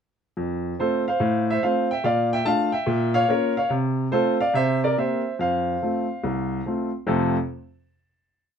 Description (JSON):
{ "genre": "jazz, stride piano", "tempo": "143 BPM", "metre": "4/4", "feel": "swing 66% on 8ths", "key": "F major", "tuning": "A4 = 440 Hz", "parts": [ { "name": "clear baby grand piano", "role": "solo", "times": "0.4-7.4 s", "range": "C2 to A5", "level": "-21 LUFS", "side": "equal", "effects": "none" } ], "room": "moderate club reverb, RT60 0.5 s", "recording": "dark, warm production", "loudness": "-21 LUFS", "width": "side -7 dB against mid", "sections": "0.4-7.1 A section; 7.1-8.6 final chord", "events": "none", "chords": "0.4 F; 1.2 F/A; 2.0 Bbmaj7; 2.9 Bbm; 3.7 F/C; 4.6 C7; 5.4 F", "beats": "| 0.36 0.78 1.20 1.62 | 2.04 2.46 2.88 3.29 | 3.71 4.13 4.55 4.97 | 5.39 5.81 6.23 6.65 | 7.07" }